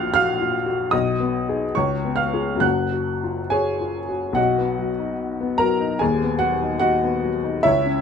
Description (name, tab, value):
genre	classical, romantic character piece for solo piano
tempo	66-80 BPM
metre	2/4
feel	rubato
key	F# major, B major from 4.4 s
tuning	A4 = 442 Hz
part	warm upright piano	solo	0.0-8.0 s	D#1 to F#6	-19 LUFS	left 1 dB	none
room	light reverb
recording	dark, warm production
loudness	-19 LUFS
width	side -6 dB against mid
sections	0.0-4.4 A section; 4.4-8.0 B section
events	none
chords	0.0 F#/A#; 0.9 G#m/B; 1.7 C#7; 2.6 F#5; 4.4 B; 6.0 B/D#